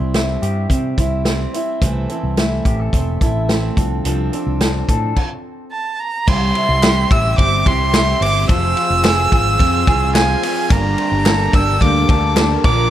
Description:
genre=jangly indie pop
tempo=108 BPM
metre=4/4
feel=straight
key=C mixolydian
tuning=A4 = 440 Hz
part: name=picked steel-string acoustic guitar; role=accompaniment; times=0.0-12.9 s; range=G2 to C5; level=-25 LUFS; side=right 4 dB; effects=none
part: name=electric guitar through a small old amp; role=arpeggios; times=0.0-12.9 s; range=E3 to A4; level=-22 LUFS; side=left 2 dB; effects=spring reverb
part: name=mellow fretless electric bass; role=bass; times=0.0-12.9 s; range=E1 to C3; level=-19 LUFS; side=equal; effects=none
part: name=vintage drum kit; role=drums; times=0.1-12.8 s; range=crash cymbal, hi-hat, kick drum, ride cymbal, snare drum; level=-18 LUFS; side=equal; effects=none
part: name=warm violin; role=melody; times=5.7-12.9 s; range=Ab5 to E6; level=-18 LUFS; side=right 2 dB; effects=none
part: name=string machine, violins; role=sustained chords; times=6.3-12.9 s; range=Bb3 to C6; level=-29 LUFS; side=equal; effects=ensemble chorus
part: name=group handclap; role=percussion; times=6.8-12.5 s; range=none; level=-28 LUFS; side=left 4 dB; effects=none
room=light reverb, small room ambience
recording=none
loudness=-14 LUFS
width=side -12 dB against mid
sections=0.0-6.3 A section; 6.3-12.9 B section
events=stop 5.2-6.3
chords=0.0 C; 1.8 Am; 3.8 Dm7/C; 6.3 C; 8.5 Fm; 10.7 Gmadd9

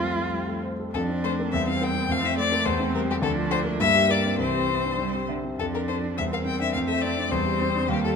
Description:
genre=quick classical-period movement for piano quartet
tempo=103 BPM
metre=2/4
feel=rubato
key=F major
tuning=A4 = 439 Hz
part: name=rich violin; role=melody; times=0.0-8.2 s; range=C4 to G5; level=-26 LUFS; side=left 7 dB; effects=none
part: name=rich cello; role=second line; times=0.0-8.2 s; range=D3 to A3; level=-31 LUFS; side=right 7 dB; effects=none
part: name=dark concert grand piano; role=accompaniment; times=0.0-8.2 s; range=C2 to E5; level=-27 LUFS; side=left 1 dB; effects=none
part: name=rich viola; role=accompaniment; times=0.0-8.2 s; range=Bb3 to F4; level=-32 LUFS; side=right 3 dB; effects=none
room=moderate concert hall reverb, RT60 2.2 s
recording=close, detailed microphones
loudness=-22 LUFS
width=side -6 dB against mid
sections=0.9-8.2 A section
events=none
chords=0.0 F; 1.5 C7/E; 2.1 F; 2.7 C/E; 3.2 Dm; 3.8 Gm; 4.4 C; 5.6 F; 6.2 C7/E; 6.7 F; 7.3 C/E

